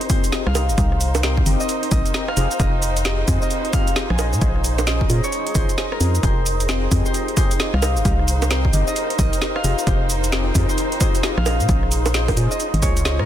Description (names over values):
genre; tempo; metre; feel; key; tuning
UK garage, two-step garage; 132 BPM; 4/4; swing 62% on 16ths; F minor; A4 = 442 Hz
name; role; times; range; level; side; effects
Celtic harp; melody; 0.0-13.3 s; Bb4 to Ab5; -28 LUFS; equal; ping-pong delay
dark studio violin section; sustained chords; 0.0-13.3 s; Eb4 to C5; -31 LUFS; right 2 dB; sidechain pumping
deep mellow chord stab; stabs; 0.0-13.2 s; C4 to Eb5; -27 LUFS; left 3 dB; chorus, ping-pong delay
garage drum kit; drums; 0.0-13.3 s; bongos, hi-hat, rim click, shaker, snare drum; -25 LUFS; right 2 dB; overdrive
granular cloud pad; texture; 0.0-13.3 s; Eb4 to C6; -30 LUFS; equal; built-in reverb, sidechain pumping
electronic kick drum; drums; 0.1-12.9 s; none; -20 LUFS; equal; none
organ-like FM bass; bass; 0.5-13.3 s; F1 to Bb2; -20 LUFS; equal; tube saturation
room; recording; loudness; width
digital ambience; dense, heavily limited modern master; -17 LUFS; side -11 dB against mid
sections
0.0-13.3 A section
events
none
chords
0.0 Fm7; 0.6 Cm7; 2.4 Fm7; 4.2 Bbm11; 6.2 Fm7; 7.8 Cm7; 9.6 Fm7; 11.5 Bbm11